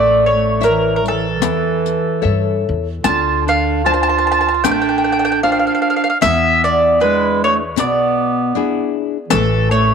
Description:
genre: italian folk, Italian serenade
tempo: 76 BPM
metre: 4/4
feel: swing 54% on 8ths, rubato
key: D minor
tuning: A4 = 440 Hz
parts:
  - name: mandolin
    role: melody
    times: 0.0-9.9 s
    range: A4 to A5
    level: -16 LUFS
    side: equal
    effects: none
  - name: clear clarinet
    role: second line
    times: 0.0-9.9 s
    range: E3 to F4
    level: -19 LUFS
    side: right 11 dB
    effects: none
  - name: nylon-string guitar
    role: accompaniment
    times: 0.0-9.9 s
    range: B2 to E5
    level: -22 LUFS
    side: left 13 dB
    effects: none
  - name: upright bass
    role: bass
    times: 0.0-9.9 s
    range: A1 to G2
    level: -22 LUFS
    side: left 1 dB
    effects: none
  - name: riq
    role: percussion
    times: 0.6-9.9 s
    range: none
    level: -21 LUFS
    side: left 15 dB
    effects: none
room: wet spring reverb, RT60 2.5 s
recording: 1960s-style stereo with parts hard left and right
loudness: -13 LUFS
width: side -6 dB against mid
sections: 0.0-9.9 A section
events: none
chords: 0.0 A; 3.0 Dm7; 6.2 E7; 9.3 A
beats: 0.63 1.43 2.23 | 3.04 3.85 4.64 5.43 | 6.22 7.00 7.78 8.54 | 9.31

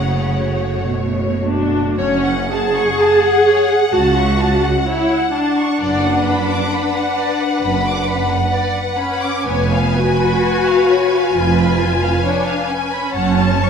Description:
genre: classical, slow romantic movement for string orchestra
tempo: 65 BPM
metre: 4/4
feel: uneven beats, rubato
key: F# minor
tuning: A4 = 440 Hz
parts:
  - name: warm studio violin section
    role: melody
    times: 0.0-13.7 s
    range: F#5 to A5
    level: -23 LUFS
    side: left 6 dB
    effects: none
  - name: rich studio violin section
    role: second line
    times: 0.0-13.7 s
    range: B4 to D6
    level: -22 LUFS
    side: left 2 dB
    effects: none
  - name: rich studio viola section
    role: accompaniment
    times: 0.0-13.7 s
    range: A3 to G#4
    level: -17 LUFS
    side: left 1 dB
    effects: none
  - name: rich studio cello section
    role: bass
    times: 0.0-13.7 s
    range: C#2 to C#3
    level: -22 LUFS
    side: right 4 dB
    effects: none
  - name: rich studio double bass section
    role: bass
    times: 0.0-13.7 s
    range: E#1 to C#2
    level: -22 LUFS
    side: right 4 dB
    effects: none
room: moderate scoring stage reverb, RT60 1.7 s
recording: none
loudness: -14 LUFS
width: side -6 dB against mid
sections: 0.0-2.0 A section; 2.0-13.7 A section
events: none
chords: 0.0 F#m; 5.8 Bm/F#; 9.5 C#7/E#; 13.1 F#m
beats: 0.88 | 1.99 3.00 3.94 4.88 | 5.80 6.72 7.62 8.52 | 9.47 10.44 11.33 12.24 | 13.15

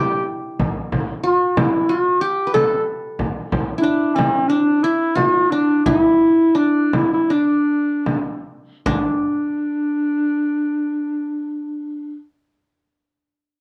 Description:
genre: Arabic maqam ensemble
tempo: 74-92 BPM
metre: 4/4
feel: straight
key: D maqam rast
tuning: A4 = 440 Hz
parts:
  - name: mellow clarinet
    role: melody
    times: 0.0-12.2 s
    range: C4+49c to A4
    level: -20 LUFS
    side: equal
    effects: none
  - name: qanun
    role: second line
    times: 0.0-12.2 s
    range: C4+50c to B4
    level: -25 LUFS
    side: equal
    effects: none
  - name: frame drum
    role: percussion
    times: 0.6-9.2 s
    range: none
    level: -25 LUFS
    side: equal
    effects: none
room: wet studio reverb, RT60 0.6 s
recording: cassette tape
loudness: -19 LUFS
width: mono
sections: 0.0-8.8 A section; 8.8-12.1 B section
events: slowing down 3.2-8.8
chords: none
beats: | 0.59 1.24 1.89 2.54 | 3.19 3.84 4.50 5.17 | 5.86 6.56 7.29 8.05 | 8.85 9.66 10.48 11.29

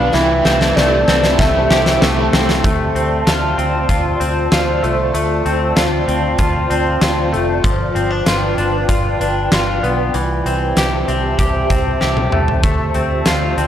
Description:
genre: dream pop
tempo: 96 BPM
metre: 4/4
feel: straight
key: D dorian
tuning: A4 = 440 Hz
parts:
  - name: warbly nostalgic lead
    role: melody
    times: 0.0-2.3 s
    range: D5 to F5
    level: -18 LUFS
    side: equal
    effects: chorus, analog delay
  - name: crunchy overdriven guitar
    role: accompaniment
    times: 0.0-2.7 s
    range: C3 to G4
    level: -23 LUFS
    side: right 2 dB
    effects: tremolo, analog chorus
  - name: ethereal airy pad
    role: sustained chords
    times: 0.0-13.7 s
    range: F4 to A5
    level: -21 LUFS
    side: equal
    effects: ensemble chorus, built-in reverb, phaser
  - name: direct-recorded clean electric guitar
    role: arpeggios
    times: 0.0-13.7 s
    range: E3 to G4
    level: -19 LUFS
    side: left 2 dB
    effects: lush chorus, analog delay
  - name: vintage muted fingered electric bass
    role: bass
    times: 0.0-13.7 s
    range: F1 to D2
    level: -20 LUFS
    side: equal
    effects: transformer saturation
  - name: huge arena drum kit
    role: drums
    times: 0.1-13.7 s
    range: hi-hat, kick drum, snare drum, toms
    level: -18 LUFS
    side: equal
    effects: none
room: studio ambience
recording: dry, gritty hardware recording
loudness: -13 LUFS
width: side -10 dB against mid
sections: 0.0-2.6 A section; 2.6-13.7 B section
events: drum fill 0.1-2.6, 12.0-12.6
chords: 0.1 C6; 2.6 Dm7; 7.6 G7; 10.1 C6; 12.6 Dm7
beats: | 0.14 0.76 1.39 2.01 | 2.64 3.26 3.89 4.51 | 5.14 5.76 6.39 7.01 | 7.64 8.26 8.89 9.51 | 10.14 10.76 11.39 12.01 | 12.64 13.26

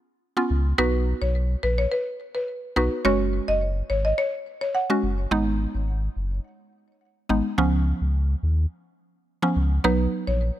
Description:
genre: dancehall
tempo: 106 BPM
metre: 4/4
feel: straight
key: unclear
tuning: A4 = 440 Hz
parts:
  - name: mallet-like synth pluck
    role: accompaniment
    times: 0.4-10.4 s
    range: E#3 to F#4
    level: -24 LUFS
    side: right 2 dB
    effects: chorus
  - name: warm sub bass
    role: bass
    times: 0.5-10.5 s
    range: F#1 to D#2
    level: -23 LUFS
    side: equal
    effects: none
  - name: buzzing marimba with medium mallets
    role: melody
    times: 0.8-5.2, 9.8-10.4 s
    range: B4 to F#5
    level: -26 LUFS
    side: left 1 dB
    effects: none
room: little or no reverb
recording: none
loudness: -22 LUFS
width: side -13 dB against mid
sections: 0.0-9.8 A section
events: none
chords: 0.0 C#7; 0.8 B; 3.1 F#sus2; 5.3 G#m; 7.6 C#7; 9.8 B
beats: 0.22 | 0.79 1.35 1.92 2.48 | 3.05 3.62 4.18 4.75 | 5.32 5.88 6.45 7.01 | 7.58 8.14 8.71 9.28 | 9.84 10.41

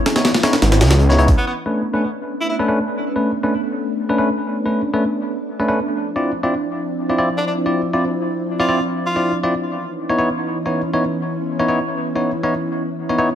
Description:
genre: drum and bass, jungle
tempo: 160 BPM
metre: 4/4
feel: straight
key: unclear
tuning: A4 = 440 Hz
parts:
  - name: soft string machine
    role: sustained chords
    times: 0.0-13.3 s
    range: E3 to E4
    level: -23 LUFS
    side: right 1 dB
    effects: ensemble chorus
  - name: crunchy breakbeat drum kit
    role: drums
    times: 0.1-1.4 s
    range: hi-hat, snare drum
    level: -28 LUFS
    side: left 1 dB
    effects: high-pass filter on hats, high-pass filter on snare, high-pass filter on room
  - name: jungle sampler-style drum kit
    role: drums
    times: 0.1-1.4 s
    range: hi-hat, kick drum, snare drum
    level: -16 LUFS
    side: equal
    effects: none
  - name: bell-like tine electric piano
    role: stabs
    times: 0.2-13.3 s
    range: A3 to D5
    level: -20 LUFS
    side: left 1 dB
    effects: low-pass filter, dub echo
  - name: detuned saw bass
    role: bass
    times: 0.6-1.4 s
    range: G#1 to C#2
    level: -13 LUFS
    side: equal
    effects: none
  - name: bright tenor saxophone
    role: melody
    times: 1.4-2.6, 7.4-9.3 s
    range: B3 to F4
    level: -26 LUFS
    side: equal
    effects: dub echo
room: moderate digital room reverb, RT60 1.2 s, studio ambience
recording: none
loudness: -16 LUFS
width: side -10 dB against mid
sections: 0.0-1.4 A section; 1.4-13.3 B section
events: filter sweep on tine electric piano 1.4-13.3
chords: 0.0 C#m9; 1.4 Bm9; 5.9 Dm9; 9.6 C#m9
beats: 0.25 0.62 1.00 | 1.37 1.75 2.12 2.50 | 2.87 3.25 3.62 4.00 | 4.37 4.75 5.12 5.50 | 5.87 6.25 6.62 7.00 | 7.37 7.75 8.12 8.50 | 8.87 9.25 9.62 10.00 | 10.37 10.75 11.12 11.50 | 11.87 12.25 12.62 13.00

